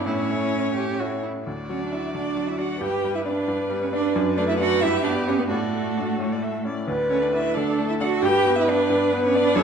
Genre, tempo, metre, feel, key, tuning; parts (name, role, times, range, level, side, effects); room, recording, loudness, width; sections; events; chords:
quick classical-period movement for piano quintet; 89 BPM (dotted quarters); 6/8; rubato; D major; A4 = 440 Hz
rich cello; second line; 0.0-9.6 s; A3 to G4; -25 LUFS; right 6 dB
bright grand piano; accompaniment; 0.0-9.6 s; D2 to C#5; -27 LUFS; left 3 dB
rich viola; accompaniment; 0.0-9.6 s; E4 to D5; -26 LUFS; equal
rich violin; melody; 0.1-9.6 s; A4 to G5; -30 LUFS; left 5 dB
rich violin; second line; 0.1-9.6 s; C#4 to E5; -34 LUFS; left 2 dB
wet recital hall reverb, RT60 1.4 s; nothing above 10.4 kHz; -21 LUFS; side -6 dB against mid
0.0-1.5 A section; 1.5-9.6 B section
0.1 A; 1.5 D; 2.8 G; 4.2 D/F#; 4.8 G; 5.5 D/A; 6.2 A; 6.9 D5; 8.2 G